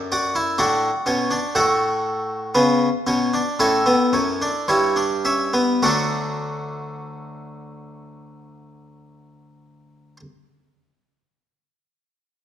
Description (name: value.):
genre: classical, baroque-style 4-part fugue for harpsichord.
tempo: 51-65 BPM.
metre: 4/4.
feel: straight.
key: D major.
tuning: A4 = 440 Hz.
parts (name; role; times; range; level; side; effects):
harpsichord; solo; 0.0-10.2 s; D2 to F#5; -19 LUFS; equal; none.
room: moderate recital hall reverb, RT60 1.3 s.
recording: none.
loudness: -18 LUFS.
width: side -10 dB against mid.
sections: 0.0-5.8 A section; 5.8-10.5 B section.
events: slowing down 0.0-5.8.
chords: 0.0 D/F#; 1.6 D/A; 3.6 A7; 5.8 D.